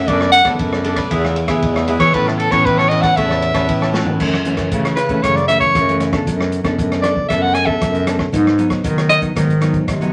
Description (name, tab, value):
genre	samba and choro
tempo	116 BPM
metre	4/4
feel	straight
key	A major, F# minor from 4.2 s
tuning	A4 = 437 Hz
part	breathy soprano saxophone	melody	0.0-9.2 s	E4 to G#5	-17 LUFS	equal	none
part	cavaquinho	accompaniment	0.0-4.2 s	D4 to A5	-27 LUFS	equal	none
part	nylon-string guitar	accompaniment	0.0-10.1 s	F#2 to A4	-22 LUFS	equal	none
part	clear bass clarinet	bass	0.0-10.1 s	E2 to F#3	-22 LUFS	equal	none
part	open jazz drum kit	drums	0.1-10.1 s	crash cymbal, hi-hat, kick drum, ride cymbal, rim click, snare drum, toms	-24 LUFS	equal	none
room	wet studio reverb, RT60 0.6 s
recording	none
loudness	-16 LUFS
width	mono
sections	0.0-4.2 A section; 4.2-10.1 B section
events	soprano saxophone solo 0.0-4.2; drum fill 3.9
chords	0.1 Bm7/F#; 1.1 E; 2.1 Aadd9; 4.2 F#m7; 6.3 Bm7/F#; 8.3 G#m7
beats	| 0.08 0.60 1.11 1.63 | 2.14 2.66 3.17 3.69 | 4.20 4.72 5.24 5.75 | 6.27 6.78 7.30 7.81 | 8.33 8.84 9.36 9.88